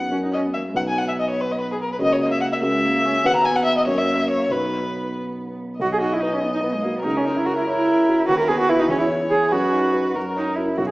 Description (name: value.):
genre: quick classical-period movement for piano trio.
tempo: 96 BPM (dotted quarters).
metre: 6/8.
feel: rubato.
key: B major.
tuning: A4 = 442 Hz.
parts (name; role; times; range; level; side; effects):
muted violin; melody; 0.0-10.6 s; G#4 to A#5; -23 LUFS; left 1 dB; none.
muted cello; second line; 0.0-10.9 s; G#3 to A#4; -22 LUFS; right 2 dB; none.
dark concert grand piano; accompaniment; 0.0-10.9 s; B1 to D#5; -24 LUFS; equal; none.
room: wet recital hall reverb, RT60 1.5 s.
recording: small speaker sound.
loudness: -18 LUFS.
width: side -20 dB against mid.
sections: 0.0-5.8 A section; 5.8-10.9 A section.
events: none.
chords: 0.1 F#; 0.8 B; 2.0 F#7/C#; 3.3 B/D#; 3.9 F#7; 4.5 B; 7.1 F#7/C#; 8.3 B/D#; 8.9 C#m/E; 9.5 B/F#; 10.2 F#.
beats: 0.12 | 0.77 1.39 | 2.02 2.64 | 3.26 3.88 | 4.51 5.16 | 5.81 6.43 | 7.05 7.67 | 8.29 8.90 | 9.52 10.15 | 10.79.